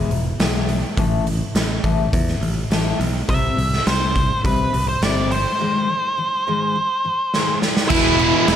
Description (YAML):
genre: quiet-loud alternative rock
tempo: 104 BPM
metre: 4/4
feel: straight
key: unclear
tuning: A4 = 440 Hz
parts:
  - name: picked steel-string acoustic guitar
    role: arpeggios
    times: 0.0-7.9 s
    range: G#2 to C4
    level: -24 LUFS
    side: left 5 dB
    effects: none
  - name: modern bright picked electric bass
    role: bass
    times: 0.0-8.6 s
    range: E1 to E2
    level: -23 LUFS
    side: right 1 dB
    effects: none
  - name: raw garage drum kit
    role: drums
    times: 0.1-8.6 s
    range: crash cymbal, hi-hat, kick drum, snare drum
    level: -21 LUFS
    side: right 1 dB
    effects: none
  - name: octave-fuzz lead guitar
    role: melody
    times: 3.3-8.6 s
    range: E4 to E5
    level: -20 LUFS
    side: equal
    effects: distortion
  - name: distorted electric guitar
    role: riff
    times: 7.9-8.6 s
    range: E2 to E3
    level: -19 LUFS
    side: right 15 dB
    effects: overdrive
  - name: distorted electric guitar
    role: riff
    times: 7.9-8.6 s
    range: E3 to G#4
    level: -20 LUFS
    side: left 1 dB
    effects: distortion
  - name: overdriven semi-hollow guitar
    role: riff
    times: 7.9-8.6 s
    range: E2 to E3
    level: -23 LUFS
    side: left 10 dB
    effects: none
room: studio ambience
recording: none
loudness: -17 LUFS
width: side -9 dB against mid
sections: 0.0-7.9 A section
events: drum fill 7.3-7.9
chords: 0.0 E; 1.0 A5; 3.3 C; 5.6 G#; 7.9 E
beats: 0.40 | 0.98 1.55 2.13 2.71 | 3.29 3.87 4.44 5.02 | 5.60 6.18 6.75 7.33 | 7.91 8.48